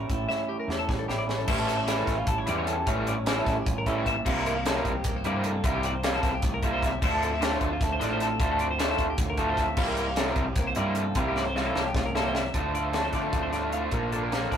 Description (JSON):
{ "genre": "math rock and midwest emo", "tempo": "304 BPM (eighths)", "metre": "7/8", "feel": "straight", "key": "D minor", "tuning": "A4 = 440 Hz", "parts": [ { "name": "electric guitar through a small old amp", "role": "accompaniment", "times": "0.0-14.6 s", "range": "D2 to G4", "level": "-34 LUFS", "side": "right 2 dB", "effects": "none" }, { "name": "twelve-string electric guitar", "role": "arpeggios", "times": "0.0-14.6 s", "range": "E4 to F5", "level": "-32 LUFS", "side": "left 2 dB", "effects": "none" }, { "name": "growling fingered electric bass", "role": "bass", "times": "0.0-14.6 s", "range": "A1 to D3", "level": "-33 LUFS", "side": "equal", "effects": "overdrive" }, { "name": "crisp fusion drum kit", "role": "drums", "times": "0.1-14.6 s", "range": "crash cymbal, hi-hat, kick drum, snare drum", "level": "-30 LUFS", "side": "equal", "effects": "none" }, { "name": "raw garage guitar", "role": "riff", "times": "1.5-14.6 s", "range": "Bb2 to E4", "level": "-29 LUFS", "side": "right 1 dB", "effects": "overdrive" } ], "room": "wet small room reverb, RT60 0.5 s", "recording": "rough rehearsal-room recording, tube saturation", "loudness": "-24 LUFS", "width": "side -8 dB against mid", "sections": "0.0-1.5 A section; 1.5-12.5 B section; 12.5-14.6 C section", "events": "drum fill 0.3-1.5, 11.4-12.5", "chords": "0.0 A7b9; 1.5 A7; 4.3 C7sus4; 7.0 Dm9; 9.8 C7sus4; 12.5 Dm7; 13.9 Bbmaj9", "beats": "| 0.10 0.30 0.50 0.70 0.90 1.10 1.29 | 1.49 1.69 1.89 2.09 2.28 2.48 2.68 | 2.88 3.08 3.27 3.47 3.67 3.87 4.06 | 4.26 4.46 4.66 4.85 5.05 5.25 5.45 | 5.64 5.84 6.04 6.23 6.43 6.63 6.83 | 7.02 7.22 7.42 7.61 7.81 8.01 8.20 | 8.40 8.60 8.79 8.99 9.19 9.39 9.58 | 9.78 9.98 10.17 10.37 10.57 10.76 10.96 | 11.16 11.36 11.55 11.75 11.95 12.14 12.34 | 12.54 12.74 12.94 13.13 13.33 13.53 13.73 | 13.93 14.12 14.32 14.52" }